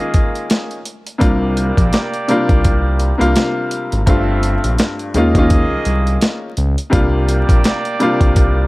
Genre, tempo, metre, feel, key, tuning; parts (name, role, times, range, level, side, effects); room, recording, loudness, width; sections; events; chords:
hip hop, boom-bap hip-hop; 84 BPM; 4/4; swing 59% on 16ths; C minor; A4 = 440 Hz
warm upright piano; accompaniment; 0.0-8.7 s; G2 to F4; -18 LUFS; left 1 dB; cassette tape, high-pass filter, low-pass filter
warm trumpet section; stabs; 0.0-8.7 s; Bb3 to E5; -24 LUFS; right 2 dB; high-pass filter, low-pass filter, slapback echo
dusty soul sampler-style drum kit; drums; 0.0-8.6 s; hi-hat, kick drum, snare drum; -15 LUFS; equal; overdrive
smooth gliding synth bass; bass; 1.2-8.7 s; G1 to Eb2; -16 LUFS; equal
little or no reverb; vinyl crackle; -13 LUFS; side -21 dB against mid
0.0-1.2 A section; 1.2-8.7 A section
break 0.0-1.2
0.0 Eb9sus4; 1.2 C9sus4; 4.1 G9sus4; 5.1 Eb9sus4; 6.9 C9sus4